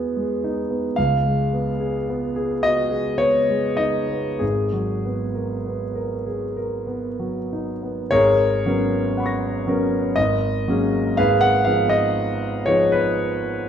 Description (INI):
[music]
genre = classical, impressionist solo piano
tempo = 45-61 BPM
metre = 3/4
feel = rubato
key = G# minor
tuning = A4 = 440 Hz
[part]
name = clear concert grand piano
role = solo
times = 0.0-13.7 s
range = G#1 to A#6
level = -19 LUFS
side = equal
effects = none
[sound]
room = wet recital hall reverb, RT60 1.4 s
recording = dark, warm production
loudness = -19 LUFS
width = side -8 dB against mid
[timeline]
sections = 0.0-8.1 A section; 8.1-13.7 B section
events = none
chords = 0.0 Emaj7; 1.0 C#9; 4.4 G#m9; 8.1 G#m11; 10.2 F#add9/G#; 11.2 G#m6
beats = | 0.96 2.07 3.20 | 4.42 5.67 6.87 | 8.11 9.16 10.17 | 11.18 12.17 13.18